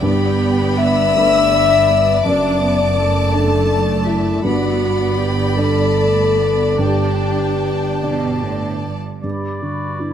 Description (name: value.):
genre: cinematic, emotional film score for orchestra.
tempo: 48-56 BPM (dotted quarters).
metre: 6/8.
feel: rubato.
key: G major.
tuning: A4 = 440 Hz.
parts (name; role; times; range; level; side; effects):
rich studio violin section; melody; 0.0-8.8 s; E5 to E6; -29 LUFS; left 2 dB; none.
rich studio violin section; second line; 0.0-9.0 s; D5 to B5; -24 LUFS; left 1 dB; none.
felt-muted upright piano; accompaniment; 0.0-10.1 s; F#2 to D5; -22 LUFS; right 1 dB; none.
warm studio viola section; accompaniment; 0.0-8.6 s; G3 to D4; -25 LUFS; right 2 dB; none.
mellow French horn section; sustained chords; 0.0-8.8 s; E4 to E5; -17 LUFS; left 4 dB; none.
clear studio double bass section; bass; 0.0-9.0 s; F#1 to G1; -23 LUFS; right 5 dB; none.
rich symphonic cello section; bass; 0.0-9.2 s; F#2 to B2; -24 LUFS; right 3 dB; none.
hollow small flute group; second line; 9.2-10.1 s; B5; -32 LUFS; left 4 dB; none.
warm clarinet; second line; 9.2-10.1 s; E4 to G4; -29 LUFS; equal; none.
warm oboe; second line; 9.2-10.1 s; D5; -29 LUFS; right 2 dB; none.
room: moderate concert hall reverb, RT60 2.3 s.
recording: close, detailed microphones.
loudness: -14 LUFS.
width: side -9 dB against mid.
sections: 0.0-9.2 A section.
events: none.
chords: 0.0 G; 2.3 D/F#; 4.5 G; 6.8 Gsus2; 9.2 G.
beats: | 0.03 1.16 | 2.25 3.34 | 4.46 5.59 | 6.80 8.03 | 9.24.